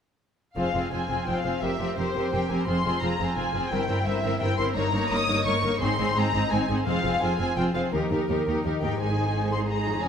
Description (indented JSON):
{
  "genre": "classical",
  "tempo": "171 BPM",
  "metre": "3/4",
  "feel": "straight",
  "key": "F minor, Ab major from 4.8 s",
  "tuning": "A4 = 441 Hz",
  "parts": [
    { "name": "dark symphonic violin section", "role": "melody", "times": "0.6-10.1 s", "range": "Bb4 to Eb6", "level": "-29 LUFS", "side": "left 2 dB", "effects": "none" },
    { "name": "warm symphonic violin section", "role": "second line", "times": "0.6-10.1 s", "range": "Ab4 to Db5", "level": "-32 LUFS", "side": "left 3 dB", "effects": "none" },
    { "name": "warm symphonic viola section", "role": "accompaniment", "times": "0.6-10.1 s", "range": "Bb3 to Ab4", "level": "-30 LUFS", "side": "right 1 dB", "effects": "none" },
    { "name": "concert harp", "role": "arpeggios", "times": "0.6-10.1 s", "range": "F2 to Ab5", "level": "-33 LUFS", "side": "left 6 dB", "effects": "none" },
    { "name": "rich chamber double bass section", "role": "bass", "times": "0.6-10.1 s", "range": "F1 to Eb2", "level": "-32 LUFS", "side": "right 3 dB", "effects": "none" },
    { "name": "warm symphonic cello section", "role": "bass", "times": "0.6-10.1 s", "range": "Eb2 to Ab2", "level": "-31 LUFS", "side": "right 3 dB", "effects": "none" }
  ],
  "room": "moderate scoring stage reverb, RT60 1.7 s",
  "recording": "none",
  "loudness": "-23 LUFS",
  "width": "side -7 dB against mid",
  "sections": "0.6-9.0 A section; 9.0-10.1 B section",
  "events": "none",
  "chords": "0.6 Fm; 1.6 C7/F; 2.7 Fm; 3.7 C7/G; 4.8 Eb7/G; 5.8 Ab; 6.9 Fm; 7.9 Eb; 9.0 Ab"
}